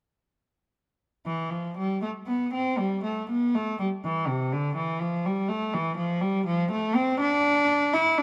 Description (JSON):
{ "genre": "classical, baroque-style suite movement for unaccompanied cello", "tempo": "122 BPM", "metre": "3/4", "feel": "rubato", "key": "C major", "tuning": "A4 = 436 Hz", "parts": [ { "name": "rich cello", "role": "solo", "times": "1.3-8.2 s", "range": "C3 to E4", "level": "-26 LUFS", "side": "equal", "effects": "none" } ], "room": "moderate stone room reverb, RT60 1.6 s", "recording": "none", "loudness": "-27 LUFS", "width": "mono", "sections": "1.3-8.2 A section", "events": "none", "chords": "none" }